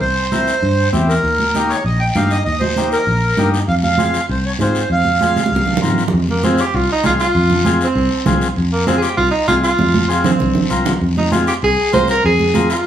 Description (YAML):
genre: latin, cumbia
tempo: 196 BPM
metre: 4/4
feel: straight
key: F minor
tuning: A4 = 440 Hz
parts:
  - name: accordion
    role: melody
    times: 0.0-5.8 s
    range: Bb4 to G5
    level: -18 LUFS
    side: right 2 dB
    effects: none
  - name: fingered electric bass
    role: bass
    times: 0.0-12.7 s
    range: Bb1 to Ab2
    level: -18 LUFS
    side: equal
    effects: none
  - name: guiro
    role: percussion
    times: 0.0-12.9 s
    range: none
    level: -28 LUFS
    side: left 4 dB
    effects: none
  - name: combo organ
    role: accompaniment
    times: 0.3-12.8 s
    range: Bb3 to Bb4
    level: -21 LUFS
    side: left 4 dB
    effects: none
  - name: congas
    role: percussion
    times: 0.3-12.7 s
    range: none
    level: -20 LUFS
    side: right 3 dB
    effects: none
  - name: bright tenor saxophone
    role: second line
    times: 6.3-12.9 s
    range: Bb3 to C5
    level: -16 LUFS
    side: right 2 dB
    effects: none
room: wet large studio reverb, RT60 0.9 s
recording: band playing live in one room, small room ambience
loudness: -13 LUFS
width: side -10 dB against mid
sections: 0.0-6.1 A section; 6.1-12.9 B section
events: drum fill 5.4-6.1, 9.8-11.0; tenor saxophone solo 6.1-12.9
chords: 0.0 C7; 1.2 Eb; 3.7 Fm